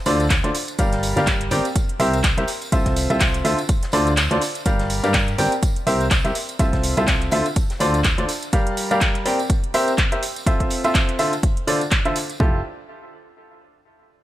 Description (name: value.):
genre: piano house.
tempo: 124 BPM.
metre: 4/4.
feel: swing 57% on 16ths.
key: F major.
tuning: A4 = 440 Hz.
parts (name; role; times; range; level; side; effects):
clear baby grand piano; riff; 0.1-12.6 s; D3 to G5; -22 LUFS; equal; sidechain pumping, low-pass filter, tape echo.
solid FM bass; bass; 0.1-8.3, 12.4-12.6 s; F1 to G2; -23 LUFS; equal; sidechain pumping.
house drum kit; drums; 0.1-12.4 s; handclaps, hi-hat; -24 LUFS; right 1 dB; studio reverb.
tambourine and snare drum; drums; 0.1-8.4 s; none; -35 LUFS; left 1 dB; none.
tambourine; percussion; 0.1-12.4 s; none; -35 LUFS; right 2 dB; none.
electronic kick drum; drums; 0.3-12.5 s; none; -20 LUFS; equal; studio reverb.
room: small room ambience.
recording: none.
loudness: -17 LUFS.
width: side -14 dB against mid.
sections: 0.0-4.7 A section; 4.7-12.4 B section; 12.4-14.2 C section.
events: kick drops out 4.2-4.7.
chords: 0.0 Dm7; 0.8 Gm7; 1.8 C7; 2.5 Fmaj7/C; 3.4 Dm7; 4.7 Gm7; 5.6 C7; 6.4 Fmaj7/C; 7.3 Dm7; 8.5 Gm7; 9.5 C7; 10.2 Fmaj7/C; 11.2 Dm7; 12.4 Fmaj9.